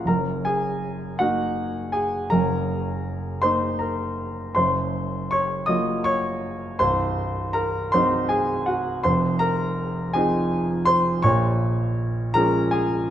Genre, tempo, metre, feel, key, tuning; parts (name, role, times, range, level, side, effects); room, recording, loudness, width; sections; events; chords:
classical, romantic nocturne for solo piano; 54 BPM (dotted quarters); 12/8; rubato; A4 = 435 Hz
warm grand piano; solo; 0.0-13.1 s; C1 to Eb6; -21 LUFS; equal
moderate recital hall reverb, RT60 1.4 s; close, detailed microphones; -21 LUFS; side -11 dB against mid
0.0-13.1 A section
0.1 Ebm/Gb; 4.6 Gbmaj7; 6.8 Cdim; 9.0 Fm7; 11.2 Bbm7